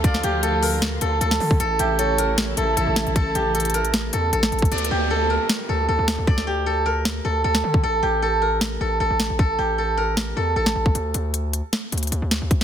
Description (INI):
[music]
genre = hip hop, trap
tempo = 154 BPM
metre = 4/4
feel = half-time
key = D harmonic minor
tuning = A4 = 443 Hz
[part]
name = steel-string zither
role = melody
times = 0.0-12.6 s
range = G4 to D5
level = -22 LUFS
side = right 1 dB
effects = low-pass filter, digital delay
[part]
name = breathy flute-like synth lead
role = second line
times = 0.0-3.5 s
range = C#5 to A5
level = -32 LUFS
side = right 6 dB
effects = chorus, tremolo, digital delay
[part]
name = dark symphonic string section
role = sustained chords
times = 0.0-4.7 s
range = C#3 to F4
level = -30 LUFS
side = left 2 dB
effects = none
[part]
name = distorted 808-style bass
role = bass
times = 0.0-12.6 s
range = A1 to D3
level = -25 LUFS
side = equal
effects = distortion
[part]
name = trap drum kit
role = drums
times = 0.0-12.6 s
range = hi-hat, kick drum, snare drum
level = -22 LUFS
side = equal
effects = none
[part]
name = downlifter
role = sound effects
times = 4.7-7.8 s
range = none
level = -30 LUFS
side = right 1 dB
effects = none
[sound]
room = digital ambience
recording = dense, heavily limited modern master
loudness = -19 LUFS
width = side -9 dB against mid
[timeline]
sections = 0.0-4.7 A section; 4.7-12.6 B section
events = hi-hats muted 4.7-10.9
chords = 0.0 Dm; 1.6 A; 4.7 D5; 7.8 A5; 10.9 N.C.